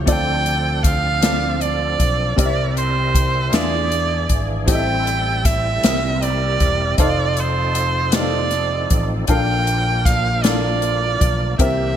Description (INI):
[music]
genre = slow gospel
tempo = 52 BPM (dotted quarters)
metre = 6/8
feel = straight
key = unclear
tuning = A4 = 440 Hz
[part]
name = warm upright piano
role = accompaniment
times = 0.0-12.0 s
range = A2 to F5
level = -25 LUFS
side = left 2 dB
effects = analog chorus
[part]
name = overdriven tonewheel organ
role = sustained chords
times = 0.0-12.0 s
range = E3 to Bb4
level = -27 LUFS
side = right 1 dB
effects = fast rotary speaker, chorus vibrato
[part]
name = fingered electric bass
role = bass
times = 0.0-12.0 s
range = E1 to E2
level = -22 LUFS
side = equal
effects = none
[part]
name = clear erhu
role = melody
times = 0.1-12.0 s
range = C5 to G5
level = -21 LUFS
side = right 4 dB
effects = none
[part]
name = swinging big-band drum kit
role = drums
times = 0.1-11.8 s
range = hi-hat, kick drum, snare drum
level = -20 LUFS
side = left 1 dB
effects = gated reverb
[sound]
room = light reverb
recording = bright 1980s-style digital production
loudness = -16 LUFS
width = side -9 dB against mid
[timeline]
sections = 0.0-12.0 A section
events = none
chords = 0.1 Dm7; 2.4 C7; 3.5 E7b9; 4.7 Am7; 5.8 C7; 7.0 F7; 9.3 Bbmaj7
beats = | 0.07 1.23 | 2.38 3.53 | 4.68 5.83 | 6.99 8.14 | 9.29 10.44 | 11.59